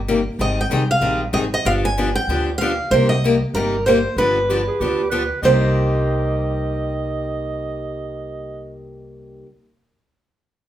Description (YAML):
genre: acoustic string swing (jazz manouche)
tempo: 190 BPM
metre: 4/4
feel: swing 60% on 8ths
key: C minor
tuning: A4 = 439 Hz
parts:
  - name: upright bass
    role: bass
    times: 0.0-9.4 s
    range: G1 to D2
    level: -23 LUFS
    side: equal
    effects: none
  - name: picked steel-string acoustic guitar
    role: accompaniment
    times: 0.1-9.5 s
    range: C3 to Ab4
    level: -23 LUFS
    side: left 3 dB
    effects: none
  - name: picked steel-string acoustic guitar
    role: melody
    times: 0.4-9.4 s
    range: Bb4 to Ab5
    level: -20 LUFS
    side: right 2 dB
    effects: none
  - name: breathy clarinet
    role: second line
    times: 4.5-8.7 s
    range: G4 to Eb5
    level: -26 LUFS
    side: right 5 dB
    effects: none
room: moderate large studio reverb, RT60 0.9 s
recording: band playing live in one room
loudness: -17 LUFS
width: side -12 dB against mid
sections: 0.0-5.4 A section; 5.4-8.0 B section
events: none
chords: 0.4 Abmaj7; 1.6 G7; 2.9 Cm7; 4.2 G7; 5.4 Cm7